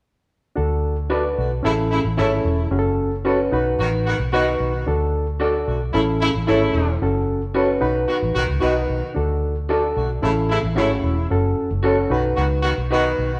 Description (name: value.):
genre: soul.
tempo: 112 BPM.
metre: 4/4.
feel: straight.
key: unclear.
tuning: A4 = 440 Hz.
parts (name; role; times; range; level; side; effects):
barky reed electric piano; accompaniment; 0.6-13.3 s; C#4 to B4; -24 LUFS; equal; overdrive.
vintage muted fingered electric bass; bass; 0.6-13.4 s; E1 to D2; -25 LUFS; equal; none.
electric guitar through a small old amp; stabs; 1.1-13.0 s; E4 to D#5; -26 LUFS; equal; none.
warm horn section; second line; 1.4-13.4 s; C#3 to F#4; -27 LUFS; equal; none.
room: wet large studio reverb, RT60 1.5 s.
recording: band playing live in one room.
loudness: -20 LUFS.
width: mono.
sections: 0.6-13.4 A section.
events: none.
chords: 0.6 D; 1.6 A; 2.7 F#m; 3.5 B; 4.9 D; 5.9 A; 7.0 F#m; 7.8 B; 9.2 D; 10.2 A; 11.3 F#m; 12.1 B.